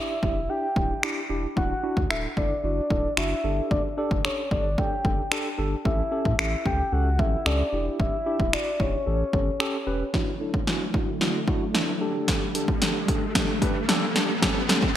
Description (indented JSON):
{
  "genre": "dance-pop",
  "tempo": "112 BPM",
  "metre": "4/4",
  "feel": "straight",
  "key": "D major",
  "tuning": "A4 = 441 Hz",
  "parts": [
    { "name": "soft octave-layered synth lead", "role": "melody", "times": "0.0-9.9 s", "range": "C#5 to G5", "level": "-29 LUFS", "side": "left 1 dB", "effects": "chorus, tremolo, digital delay" },
    { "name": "mellow tine electric piano", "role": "accompaniment", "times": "0.0-14.9 s", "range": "C#4 to B4", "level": "-30 LUFS", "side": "right 1 dB", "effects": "fast stereo tremolo, low-pass filter" },
    { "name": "warm sub bass", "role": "bass", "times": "0.2-10.0 s", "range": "D1 to A2", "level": "-28 LUFS", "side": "equal", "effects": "sidechain pumping" },
    { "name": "punchy analog drum machine", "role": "drums", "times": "0.2-14.9 s", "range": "finger snaps, hi-hat, kick drum, snare drum", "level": "-25 LUFS", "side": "equal", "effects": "gated reverb" },
    { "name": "string machine, violas", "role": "sustained chords", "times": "10.1-15.0 s", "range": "C#3 to A4", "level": "-32 LUFS", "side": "equal", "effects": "phaser, ensemble chorus, sidechain pumping, low-pass filter" },
    { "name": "riser", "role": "sound effects", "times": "11.7-15.0 s", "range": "none", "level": "-33 LUFS", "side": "equal", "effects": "none" }
  ],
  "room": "moderate lush hall reverb, RT60 2.2 s",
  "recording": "bright 1980s-style digital production",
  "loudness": "-23 LUFS",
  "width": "side -11 dB against mid",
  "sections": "0.0-10.1 A section; 10.1-15.0 B section",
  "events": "build-up 10.1-15.0; drum fill 10.1-15.0; filter sweep 10.1-15.0; riser 11.7-15.0",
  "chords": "0.0 Em7; 1.6 Dadd9; 3.4 Gsus2; 5.9 A7; 7.7 Em7; 9.1 A7; 10.1 Dadd9; 12.0 Gsus2; 14.4 A7"
}